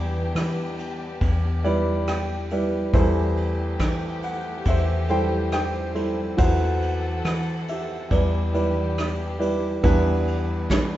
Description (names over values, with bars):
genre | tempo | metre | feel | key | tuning
acoustic folk-pop ballad | 70 BPM | 4/4 | straight | E minor | A4 = 440 Hz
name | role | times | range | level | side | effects
felt-muted upright piano | melody | 0.0-11.0 s | E2 to G5 | -25 LUFS | right 1 dB | none
dark chamber string section | sustained chords | 0.0-11.0 s | E3 to F#5 | -33 LUFS | left 2 dB | none
woody fretless electric bass | bass | 0.0-11.0 s | E2 to E3 | -26 LUFS | left 1 dB | none
soft brush drum kit | drums | 0.4-10.9 s | kick drum, ride cymbal, rim click, snare drum | -27 LUFS | equal | none
room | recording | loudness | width
moderate recital hall reverb, RT60 1.2 s | recorded in a church or concert hall, nothing above 7.7 kHz | -21 LUFS | side -14 dB against mid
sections
0.0-9.8 A section; 9.8-11.0 A section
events
felt piano fill 1.6-2.9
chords
0.0 Em7; 2.9 Am7/E; 6.4 F#m7b5/E; 8.1 Em7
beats
0.35 1.21 2.07 | 2.93 3.80 4.66 5.52 | 6.38 7.25 8.11 8.97 | 9.84 10.70